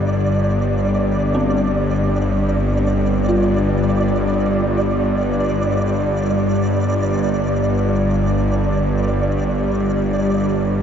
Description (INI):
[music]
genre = dark ambient drone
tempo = free time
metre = none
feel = none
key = unclear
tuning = A4 = 441 Hz
[part]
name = dark detuned synth bell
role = arpeggios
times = 0.0-10.8 s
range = C4 to G4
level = -28 LUFS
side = equal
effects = chorus, tape echo
[part]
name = bowed-like drone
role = drone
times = 0.0-10.8 s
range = G1 to G2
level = -17 LUFS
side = equal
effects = built-in reverb
[part]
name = flickering grainy texture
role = texture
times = 0.0-10.8 s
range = D5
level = -24 LUFS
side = right 3 dB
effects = built-in reverb
[sound]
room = wet huge ambient reverb, RT60 7.7 s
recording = dark, warm production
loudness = -16 LUFS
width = side -8 dB against mid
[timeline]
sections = 0.0-10.8 A section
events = none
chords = 0.0 G5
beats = free time